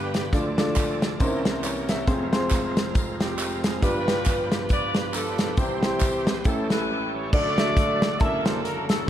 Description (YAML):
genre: uptempo gospel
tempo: 137 BPM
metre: 4/4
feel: swing 58% on 8ths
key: C major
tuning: A4 = 440 Hz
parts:
  - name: mellow horn section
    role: melody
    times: 0.0-0.3, 3.2-9.1 s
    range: C4 to E5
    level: -28 LUFS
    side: equal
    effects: none
  - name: warm grand piano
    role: accompaniment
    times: 0.0-9.1 s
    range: F1 to A5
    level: -27 LUFS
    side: left 1 dB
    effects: none
  - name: bright tonewheel organ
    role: sustained chords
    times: 0.0-9.1 s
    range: D3 to D5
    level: -33 LUFS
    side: right 3 dB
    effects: slow rotary speaker, overdrive, chorus vibrato
  - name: natural country drum kit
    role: drums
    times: 0.1-9.0 s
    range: crash cymbal, hi-hat, kick drum, snare drum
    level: -24 LUFS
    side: equal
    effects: none
  - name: tambourine and handclaps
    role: percussion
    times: 0.1-6.8 s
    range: none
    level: -36 LUFS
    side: right 2 dB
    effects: none
room: moderate concert hall reverb, RT60 2.2 s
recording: none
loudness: -21 LUFS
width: side -11 dB against mid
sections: 0.0-7.3 A section; 7.3-9.1 A section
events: break 6.9-7.3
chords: 0.3 Dm; 1.2 C7b9; 2.1 Fm; 3.8 G7; 5.6 C; 6.5 A7; 7.3 D; 8.2 F#7alt